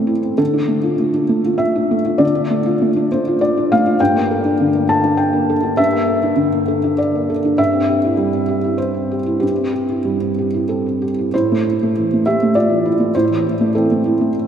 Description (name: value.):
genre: neoclassical minimalist piano.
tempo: 100 BPM.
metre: 3/4.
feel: rubato.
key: unclear.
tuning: A4 = 441 Hz.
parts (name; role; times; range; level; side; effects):
felt-muted upright piano; solo; 0.0-14.5 s; G2 to A5; -14 LUFS; equal; none.
room: wet cathedral reverb, RT60 5.2 s.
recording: in a vast, echoing space.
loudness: -14 LUFS.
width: side -8 dB against mid.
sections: 0.0-11.3 A section; 11.3-14.5 A section.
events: none.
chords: 0.4 Dm; 4.0 Gmadd9; 7.6 C/G; 11.3 Am.